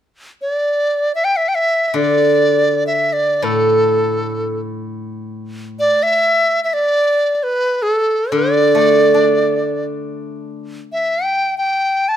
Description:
chinese traditional, Chinese chamber ensemble; free time; D zhi mode; A4 = 440 Hz
bright large dizi; melody; 0.4-12.2 s; A4 to A5; -15 LUFS; equal
steel-string zither; accompaniment; 1.9-10.8 s; A2 to D4; -17 LUFS; equal
light reverb; close, detailed microphones; -13 LUFS; side -10 dB against mid
0.0-12.2 A section
free time

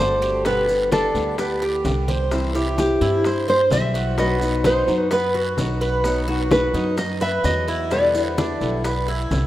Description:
latin, Cuban son and guajira; 129 BPM; 4/4; straight; A4 = 440 Hz
nylon-string guitar; melody; 0.0-8.4 s; G4 to E5; -21 LUFS; equal
fingerpicked steel-string acoustic guitar; accompaniment; 0.0-9.5 s; B2 to G4; -26 LUFS; left 2 dB
Cuban tres; arpeggios; 0.0-9.5 s; B3 to D5; -26 LUFS; right 2 dB
upright bass; bass; 0.0-9.5 s; G1 to G2; -25 LUFS; equal
bongos; percussion; 0.2-9.5 s; -33 LUFS; left 3 dB
guiro; percussion; 0.2-9.5 s; -37 LUFS; right 3 dB
maracas; percussion; 0.2-9.5 s; -41 LUFS; equal
congas; percussion; 0.5-9.5 s; -27 LUFS; left 2 dB
wet lush hall reverb, RT60 2.3 s; rough home demo mix; -18 LUFS; side -14 dB against mid
0.0-9.5 A section
0.5 G; 2.3 C; 4.2 B; 7.9 Em7
| 0.45 0.92 1.38 1.85 | 2.32 2.78 3.25 3.71 | 4.18 4.65 5.11 5.58 | 6.04 6.51 6.98 7.45 | 7.91 8.38 8.85 9.31

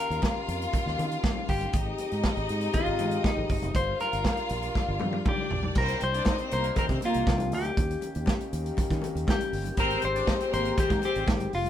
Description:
disco; 120 BPM; 4/4; straight; C minor; A4 = 440 Hz
clean electric guitar; melody; 0.0-11.7 s; Eb4 to C5; -31 LUFS; left 2 dB
clear studio string section; second line; 0.0-11.2 s; Bb3 to F5; -33 LUFS; left 1 dB
warm French horn section; sustained chords; 0.0-11.7 s; C3 to Bb4; -36 LUFS; left 2 dB
fingered electric bass; bass; 0.1-11.7 s; F1 to Eb3; -32 LUFS; right 1 dB
warm soul drum kit; drums; 0.1-11.7 s; crash cymbal, hi-hat, kick drum, snare drum, toms; -28 LUFS; right 1 dB
congas; percussion; 0.2-11.7 s; -38 LUFS; left 5 dB
moderate studio reverb, RT60 0.8 s; band playing live in one room; -25 LUFS; side -10 dB against mid
0.0-5.8 A section; 5.8-11.7 B section
drum fill 4.8-5.8
0.0 Eb7; 1.7 Abmaj7; 3.8 Gm7; 5.8 Cm9; 7.8 Eb7; 9.8 Abmaj7
0.23 0.73 1.24 | 1.74 2.25 2.75 3.25 | 3.76 4.26 4.76 5.26 | 5.77 6.27 6.77 7.27 | 7.77 8.27 8.78 9.28 | 9.78 10.28 10.78 11.28

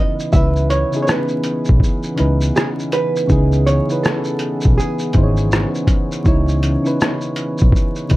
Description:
lo-fi hip hop; 81 BPM; 4/4; swing 61% on 16ths; C# minor; A4 = 439 Hz
hollow-body jazz guitar; melody; 0.0-8.2 s; G#4 to E5; -22 LUFS; right 2 dB; low-pass filter, plate reverb
soft electric-piano-like synth keys; accompaniment; 0.0-8.2 s; C#3 to C#5; -21 LUFS; left 1 dB; chorus, cassette tape, low-pass filter
dark analog pad; sustained chords; 0.0-8.2 s; E3 to C#4; -25 LUFS; right 1 dB; wide subtle chorus, low-pass filter
lo-fi sampler-style drum kit; drums; 0.2-8.2 s; hi-hat, kick drum, rim click, shaker; -17 LUFS; equal
vintage muted fingered electric bass; bass; 0.3-8.2 s; G#1 to C#2; -16 LUFS; equal
light reverb; dark, warm production, vinyl crackle; -14 LUFS; side -18 dB against mid
0.0-8.2 A section
0.0 C#m9
| 0.33 1.07 1.81 2.55 | 3.29 4.04 4.78 5.52 | 6.26 7.00 7.74

